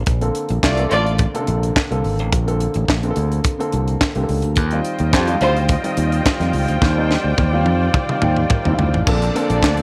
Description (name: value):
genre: disco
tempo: 107 BPM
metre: 4/4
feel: straight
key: Bb major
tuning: A4 = 440 Hz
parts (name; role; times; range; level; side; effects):
- warm baby grand piano; accompaniment; 0.0-9.8 s; C3 to G5; -25 LUFS; equal; none
- modern bright fingered electric bass; bass; 0.0-9.8 s; Ab1 to F2; -21 LUFS; equal; none
- tight funk drum kit; drums; 0.1-9.8 s; crash cymbal, handclaps, hi-hat, kick drum, snare drum, toms; -22 LUFS; equal; none
- dark studio violin section; second line; 0.6-1.2, 5.1-5.7, 9.1-9.8 s; G3 to D5; -23 LUFS; equal; none
- bright studio string section; sustained chords; 4.6-9.8 s; F3 to G5; -27 LUFS; equal; none
room: studio ambience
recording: none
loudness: -18 LUFS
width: mono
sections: 0.1-9.1 A section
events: drum fill 6.8-9.1; grand piano fill 7.9-9.1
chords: 0.1 Bbmaj9; 4.6 Eb69; 9.1 Bbmaj9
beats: | 0.07 0.64 1.20 1.76 | 2.33 2.89 3.45 4.01 | 4.58 5.14 5.70 6.26 | 6.82 7.38 7.94 8.50 | 9.06 9.62